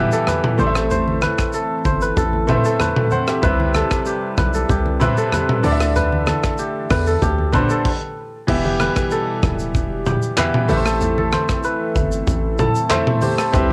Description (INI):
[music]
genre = afrobeats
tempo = 95 BPM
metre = 4/4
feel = straight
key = unclear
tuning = A4 = 442 Hz
[part]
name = bright grand piano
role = accompaniment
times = 0.0-13.7 s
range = C3 to A5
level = -25 LUFS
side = equal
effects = cassette tape, plate reverb
[part]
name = hollow soft pad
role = sustained chords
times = 0.0-13.7 s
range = B2 to B4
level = -29 LUFS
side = equal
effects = chorus, cassette tape, plate reverb
[part]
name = kora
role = riff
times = 0.0-13.7 s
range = G4 to D5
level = -25 LUFS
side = equal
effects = cassette tape, analog delay
[part]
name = hard-hitting 808-style bass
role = bass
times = 0.0-13.7 s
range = D1 to E2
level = -24 LUFS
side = equal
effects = none
[part]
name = modern studio drum kit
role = drums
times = 0.1-13.7 s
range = crash cymbal, handclaps, hi-hat, kick drum, rim click, shaker, toms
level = -24 LUFS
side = equal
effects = none
[part]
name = congas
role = percussion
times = 0.3-13.7 s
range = none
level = -29 LUFS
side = equal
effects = none
[sound]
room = light reverb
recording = home recording on cassette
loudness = -19 LUFS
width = mono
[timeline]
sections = 0.0-8.5 A section; 8.5-13.7 B section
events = stop 7.9-8.5; grand piano fill 12.3-13.5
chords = 0.0 Em; 0.6 Am; 3.4 Cmaj7; 5.6 Dsus2; 8.5 Em; 10.7 Am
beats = 0.27 | 0.91 1.54 2.17 2.80 | 3.43 4.06 4.69 5.33 | 5.96 6.59 7.22 7.85 | 8.48 9.12 9.75 10.38 | 11.01 11.64 12.27 12.90 | 13.54